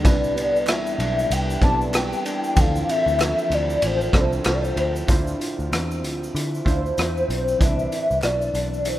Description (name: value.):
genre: indie pop, bedroom pop.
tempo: 95 BPM.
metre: 4/4.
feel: swing 60% on 16ths.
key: unclear.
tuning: A4 = 440 Hz.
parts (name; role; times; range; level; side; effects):
hollow clarinet-like synth lead; melody; 0.0-9.0 s; C5 to A5; -23 LUFS; left 1 dB; ensemble chorus, slapback echo.
electric guitar through a small old amp; accompaniment; 0.0-9.0 s; D3 to E4; -31 LUFS; left 2 dB; wide subtle chorus, warbly pitch drift.
warm analog keys; accompaniment; 0.0-9.0 s; E3 to D5; -30 LUFS; right 4 dB; chorus.
vintage muted picked electric bass; bass; 0.0-9.0 s; A1 to D3; -26 LUFS; equal; none.
raw garage drum kit; drums; 0.0-9.0 s; hi-hat, kick drum, ride cymbal, rim click, shaker; -23 LUFS; equal; none.
group handclap; percussion; 0.7-8.4 s; none; -38 LUFS; right 2 dB; none.
room: light reverb, studio reverb.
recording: rough home demo mix.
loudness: -19 LUFS.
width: side -14 dB against mid.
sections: 0.0-5.1 A section; 5.1-7.6 B section; 7.6-9.0 C section.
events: none.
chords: 0.0 Cmaj9; 2.6 Dm9; 7.6 Cmaj9.